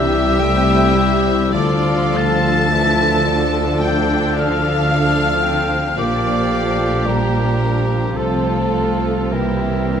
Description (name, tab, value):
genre	classical, slow romantic movement for symphony orchestra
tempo	48-57 BPM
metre	4/4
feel	rubato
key	unclear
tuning	A4 = 440 Hz
part	warm studio violin section	melody	0.0-10.0 s	G4 to A5	-25 LUFS	left 3 dB	none
part	clear clarinet	second line	0.0-10.0 s	C5 to G5	-28 LUFS	left 1 dB	none
part	clear oboe	second line	0.0-10.0 s	G4 to Bb4	-30 LUFS	right 1 dB	none
part	mellow hollow silver concert flute	second line	0.0-10.0 s	G5 to A6	-22 LUFS	left 2 dB	none
part	rich studio violin section	second line	0.0-10.0 s	C4 to A4	-27 LUFS	left 6 dB	none
part	mellow bassoon	accompaniment	0.0-10.0 s	E3 to G3	-25 LUFS	right 4 dB	none
part	rich studio viola section	accompaniment	0.0-10.0 s	D3 to D4	-24 LUFS	right 2 dB	none
part	mellow French horn section	sustained chords	0.0-10.0 s	E3 to Bb4	-27 LUFS	left 1 dB	none
part	concert harp	arpeggios	0.0-10.0 s	Bb2 to G4	-25 LUFS	left 8 dB	none
part	rich studio cello section	bass	0.0-10.0 s	Bb2 to D3	-24 LUFS	right 2 dB	none
part	warm studio double bass section	bass	0.0-10.0 s	Bb1 to D2	-22 LUFS	right 2 dB	none
room	moderate scoring stage reverb, RT60 1.8 s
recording	close, detailed microphones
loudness	-14 LUFS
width	side -8 dB against mid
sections	0.0-10.0 A section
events	none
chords	0.0 C; 1.5 Dm; 6.0 Gm7/Bb; 8.2 F/C; 9.3 C7